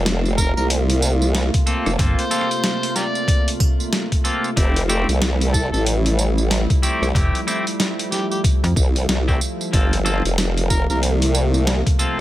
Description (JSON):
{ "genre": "glitch hop", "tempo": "93 BPM", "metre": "4/4", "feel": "swing 60% on 16ths", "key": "G dorian", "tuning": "A4 = 437 Hz", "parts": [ { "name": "warbly tape-like pad", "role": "sustained chords", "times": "0.0-12.2 s", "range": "C3 to F4", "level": "-26 LUFS", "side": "equal", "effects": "chorus, built-in reverb, sidechain pumping" }, { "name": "formant-sweep wobble bass", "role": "bass", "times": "0.0-11.8 s", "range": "F1 to C2", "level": "-19 LUFS", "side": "equal", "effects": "chorus" }, { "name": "boom bap sampler-style drum kit", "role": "drums", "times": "0.1-12.1 s", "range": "hi-hat, rim click, snare drum, tambourine", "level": "-24 LUFS", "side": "equal", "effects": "none" }, { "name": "overdriven harmonica", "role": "melody", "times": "0.4-11.0 s", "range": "G4 to D5", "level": "-26 LUFS", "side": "left 1 dB", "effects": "digital delay" }, { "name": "electronic kick drum", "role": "drums", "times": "0.4-12.0 s", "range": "none", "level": "-18 LUFS", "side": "equal", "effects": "none" }, { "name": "clean electric guitar", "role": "stabs", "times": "1.7-12.2 s", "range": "A3 to A4", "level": "-25 LUFS", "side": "left 1 dB", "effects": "harmonic tremolo, sidechain pumping, digital delay" }, { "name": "slap-like FM bass", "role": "bass", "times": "2.0-2.2, 7.1-8.7 s", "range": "F1 to F2", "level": "-20 LUFS", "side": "equal", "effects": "none" } ], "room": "little or no reverb", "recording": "none", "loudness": "-16 LUFS", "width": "side -14 dB against mid", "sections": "0.0-12.2 A section", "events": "none", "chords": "0.0 Gm11 (rootless); 4.6 Fmaj9; 9.7 Gm11", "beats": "0.05 0.70 1.34 | 1.99 2.63 3.28 3.92 | 4.57 5.22 5.86 6.51 | 7.15 7.80 8.44 9.09 | 9.73 10.38 11.02 11.67" }